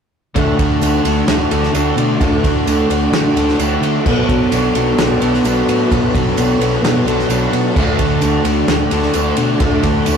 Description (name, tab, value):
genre	rock, shoegaze and dream pop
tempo	130 BPM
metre	4/4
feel	straight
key	D major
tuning	A4 = 440 Hz
part	overdriven electric guitar	riff	0.3-10.2 s	B2 to D4	-23 LUFS	left 1 dB	none
part	thick fuzz guitar	riff	0.3-10.2 s	B2 to D4	-18 LUFS	left 2 dB	distortion
part	phased string machine	sustained chords	0.4-10.2 s	B4 to D6	-29 LUFS	right 1 dB	ensemble chorus, phaser
part	picked twelve-string acoustic guitar	arpeggios	0.4-10.2 s	F#4 to A4	-22 LUFS	left 1 dB	none
part	electric guitar through a small old amp	riff	0.4-10.2 s	B2 to F#4	-20 LUFS	right 2 dB	none
part	vintage muted fingered electric bass	bass	0.4-10.2 s	B1 to D3	-21 LUFS	equal	none
part	loose indie drum kit	drums	0.4-10.2 s	crash cymbal, kick drum, ride cymbal, snare drum	-19 LUFS	right 1 dB	none
part	tambourine	percussion	0.8-10.2 s	none	-33 LUFS	right 7 dB	none
room	moderate small room reverb, RT60 0.5 s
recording	rough rehearsal-room recording, warm saturation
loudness	-12 LUFS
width	side -7 dB against mid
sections	0.4-10.2 A section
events	none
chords	0.4 D; 4.1 Bm7; 7.8 D